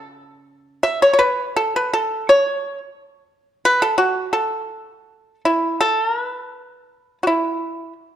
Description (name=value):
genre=chinese traditional, Chinese solo plucked strings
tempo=78-90 BPM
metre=2/4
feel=rubato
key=unclear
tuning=A4 = 442 Hz
part: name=pipa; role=solo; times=0.0-7.9 s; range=C#3 to E5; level=-16 LUFS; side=equal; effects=none
room=moderate recital hall reverb, RT60 1.5 s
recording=dark, warm production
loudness=-17 LUFS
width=side -10 dB against mid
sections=0.0-5.8 A section; 5.8-8.2 B section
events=none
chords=none